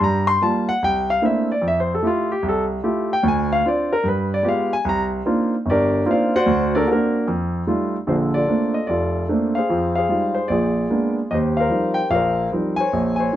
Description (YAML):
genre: solo jazz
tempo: 149 BPM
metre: 4/4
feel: swing 66% on 8ths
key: Bb major from 8.1 s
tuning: A4 = 436 Hz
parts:
  - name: warm grand piano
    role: solo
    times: 0.0-13.4 s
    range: F1 to C6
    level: -18 LUFS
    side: equal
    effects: none
room: light reverb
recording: dark, warm production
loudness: -18 LUFS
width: side -12 dB against mid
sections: 0.0-8.1 A section; 8.1-13.4 B section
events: grand piano solo 0.0-8.1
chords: 0.0 Gm7; 0.8 C13; 1.6 Fmaj9; 3.2 Dm7b5; 4.0 G7b9; 4.9 Cm11; 6.5 D7b13; 7.3 F9; 8.1 Bbmaj9; 9.7 Fm9; 10.5 Bb7b9; 11.3 Eb69